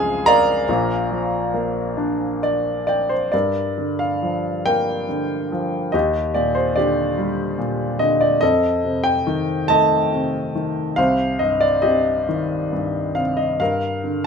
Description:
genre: classical, lyrical solo piano.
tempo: 65-73 BPM.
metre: 3/4.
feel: rubato.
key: Bb major, G minor from 3.3 s.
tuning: A4 = 442 Hz.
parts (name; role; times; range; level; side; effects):
clear grand piano; solo; 0.0-14.3 s; Bb1 to Bb5; -18 LUFS; equal; none.
room: light reverb.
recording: none.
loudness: -18 LUFS.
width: side -6 dB against mid.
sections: 0.0-3.3 A section; 3.3-14.3 B section.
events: grand piano fill 2.0-3.3.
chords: 0.0 Db; 0.7 Bb; 3.3 Gm7; 5.9 Ebmaj7; 8.4 F7; 11.0 Cm; 13.6 Gm.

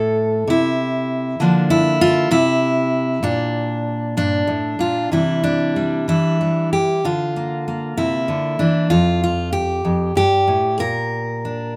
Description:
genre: folk, solo fingerstyle acoustic guitar.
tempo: 64 BPM (dotted quarters).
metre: 6/8.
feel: rubato.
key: unclear.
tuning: A4 = 440 Hz.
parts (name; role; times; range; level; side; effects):
fingerpicked steel-string acoustic guitar; solo; 0.0-11.8 s; F2 to Bb4; -19 LUFS; equal; none.
room: light reverb.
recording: none.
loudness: -19 LUFS.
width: mono.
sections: 0.0-5.1 A section; 5.1-11.8 B section.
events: none.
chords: 0.0 N.C.; 1.4 Bb/D; 2.3 N.C.; 3.2 Bb; 5.1 Cadd9; 7.0 Bb/D; 8.9 Fsus2; 10.8 Bb.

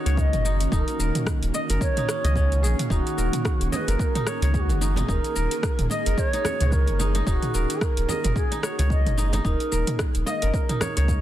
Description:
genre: organic downtempo.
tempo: 110 BPM.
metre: 4/4.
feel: swing 58% on 16ths.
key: Eb minor.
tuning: A4 = 440 Hz.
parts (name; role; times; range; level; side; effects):
bass bansuri; melody; 0.0-11.1 s; Gb4 to F5; -30 LUFS; equal; tape echo.
ethereal airy pad; sustained chords; 0.0-11.2 s; Eb3 to Ab4; -32 LUFS; right 1 dB; ensemble chorus, built-in reverb, sidechain pumping.
kora; arpeggios; 0.0-11.2 s; Db4 to Eb5; -31 LUFS; right 1 dB; tape echo.
warm sub bass; bass; 0.1-11.2 s; Eb1 to Db2; -22 LUFS; equal; sidechain pumping.
deep house drum kit; drums; 0.1-11.2 s; hi-hat, rim click, shaker, toms; -30 LUFS; equal; overdrive.
electronic kick drum; drums; 0.2-11.2 s; none; -26 LUFS; equal; overdrive.
congas and bongos; percussion; 3.7-10.9 s; none; -33 LUFS; right 3 dB; none.
room: light reverb.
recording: dense, heavily limited modern master.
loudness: -21 LUFS.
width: side -13 dB against mid.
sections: 0.0-11.2 A section.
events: none.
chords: 0.0 Ebm7.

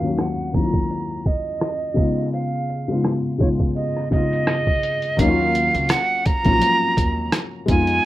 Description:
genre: lo-fi hip hop.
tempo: 84 BPM.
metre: 4/4.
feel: swing 56% on 16ths.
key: Eb minor.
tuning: A4 = 440 Hz.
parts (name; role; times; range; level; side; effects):
breathy bright jazz flute; melody; 0.0-8.1 s; Db5 to Bb5; -22 LUFS; right 3 dB; low-pass filter.
felt-muted upright piano; accompaniment; 0.0-8.1 s; Eb2 to Gb4; -22 LUFS; left 2 dB; cassette tape, low-pass filter.
lo-fi sampler-style drum kit; drums; 0.0-8.0 s; hi-hat, kick drum, rim click; -21 LUFS; equal; overdrive.
upright bass; bass; 5.2-8.0 s; Bb1 to F2; -24 LUFS; equal; none.
room: little or no reverb.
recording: rough home demo mix, low-pass filter.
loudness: -18 LUFS.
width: side -15 dB against mid.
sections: 0.0-5.2 A section; 5.2-8.1 B section.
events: filter sweep 0.0-5.2.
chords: 0.0 Ebm9; 2.0 Db9; 5.2 Ebm9.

